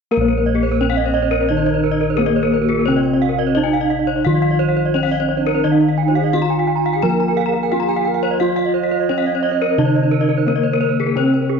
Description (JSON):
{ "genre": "Balinese gamelan", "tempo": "87 BPM", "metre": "4/4", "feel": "straight", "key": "Bb slendro", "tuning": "A4 = 441 Hz", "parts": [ { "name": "gamelan-type bronze metallophone", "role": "melody", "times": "0.1-11.6 s", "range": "Bb3 to Bb4", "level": "-20 LUFS", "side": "equal", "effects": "slapback echo" }, { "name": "gamelan-type bronze metallophone", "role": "accompaniment", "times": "0.1-11.6 s", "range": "C3+30c to Bb3", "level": "-24 LUFS", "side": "left 8 dB", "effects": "none" }, { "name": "gamelan-type bronze metallophone", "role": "arpeggios", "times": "0.1-11.4 s", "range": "Ab4-45c to Bb5", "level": "-22 LUFS", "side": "left 11 dB", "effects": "none" }, { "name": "gamelan-type bossed gongs", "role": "bass", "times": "0.1-11.6 s", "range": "Bb1 to Bb4", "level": "-21 LUFS", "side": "equal", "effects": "none" }, { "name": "gamelan-type bronze metallophone", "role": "arpeggios", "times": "0.2-11.6 s", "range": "Ab4-45c to Bb5", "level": "-23 LUFS", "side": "right 12 dB", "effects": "none" }, { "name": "low xiao", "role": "second line", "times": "0.9-10.6 s", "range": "Eb4-39c to F5+26c", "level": "-24 LUFS", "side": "right 12 dB", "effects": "slapback echo" } ], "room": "moderate plate reverb, RT60 2.8 s", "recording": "1960s-style stereo with parts hard left and right, nothing above 7.6 kHz", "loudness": "-15 LUFS", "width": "side -6 dB against mid", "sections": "0.1-11.6 A section", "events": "none", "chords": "none" }